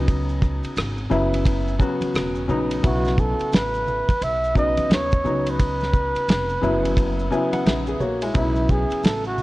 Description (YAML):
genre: hip hop, jazz-hop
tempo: 87 BPM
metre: 4/4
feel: swing 63% on 16ths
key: B mixolydian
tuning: A4 = 437 Hz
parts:
  - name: warm upright piano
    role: accompaniment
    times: 0.0-9.4 s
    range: C#3 to G#5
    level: -24 LUFS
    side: left 2 dB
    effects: none
  - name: upright bass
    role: bass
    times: 0.0-9.4 s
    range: E1 to D#2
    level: -26 LUFS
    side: equal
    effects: none
  - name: cloth-damped thuddy drum kit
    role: drums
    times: 0.1-9.3 s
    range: hi-hat, kick drum, ride cymbal, rim click, snare drum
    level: -22 LUFS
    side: equal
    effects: none
  - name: maracas and congas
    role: percussion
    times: 0.1-9.4 s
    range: none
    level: -35 LUFS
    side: right 2 dB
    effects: none
  - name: breathy flugelhorn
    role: melody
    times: 2.9-9.4 s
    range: E4 to E5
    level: -24 LUFS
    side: right 1 dB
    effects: tape echo
room: light reverb, small room ambience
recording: worn, warbling old tape, cassette tape, warbly pitch drift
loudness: -19 LUFS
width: side -18 dB against mid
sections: 0.0-9.4 A section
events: upright piano fill 7.0-8.4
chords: 0.0 C#9sus4; 1.1 F#7sus4; 2.8 B9sus4; 5.2 C#9sus4; 6.6 F#7sus4; 8.4 B9sus4